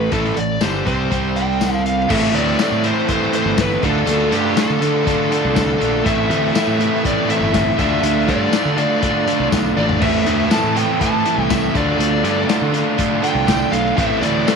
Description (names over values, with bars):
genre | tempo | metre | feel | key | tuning
classic rock | 121 BPM | 4/4 | straight | A minor | A4 = 440 Hz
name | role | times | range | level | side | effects
smooth overdriven lead guitar | melody | 0.0-14.6 s | G4 to A5 | -21 LUFS | left 2 dB | none
biting overdriven guitar | riff | 0.0-14.6 s | G2 to F4 | -23 LUFS | left 12 dB | none
overdriven electric guitar | riff | 0.0-14.6 s | G2 to D4 | -21 LUFS | right 12 dB | none
fuzz fingered electric bass | bass | 0.0-14.4 s | G1 to D3 | -23 LUFS | equal | overdrive
vintage drum kit | drums | 0.1-14.6 s | crash cymbal, hi-hat, kick drum, snare drum, tambourine, toms | -22 LUFS | left 4 dB | none
bright tonewheel organ | sustained chords | 1.8-14.6 s | A3 to D5 | -33 LUFS | equal | none
distorted electric guitar | riff | 2.1-14.6 s | A2 to A4 | -25 LUFS | equal | distortion
room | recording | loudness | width
light reverb, studio reverb | 1960s-style stereo with parts hard left and right | -15 LUFS | side -5 dB against mid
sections
0.0-2.1 A section; 2.1-14.6 B section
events
drum fill 9.8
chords
0.0 Am; 1.1 C5; 2.1 Am; 3.8 Dm; 6.1 Am; 7.8 Dm; 10.0 Am; 11.7 Dm; 14.0 Am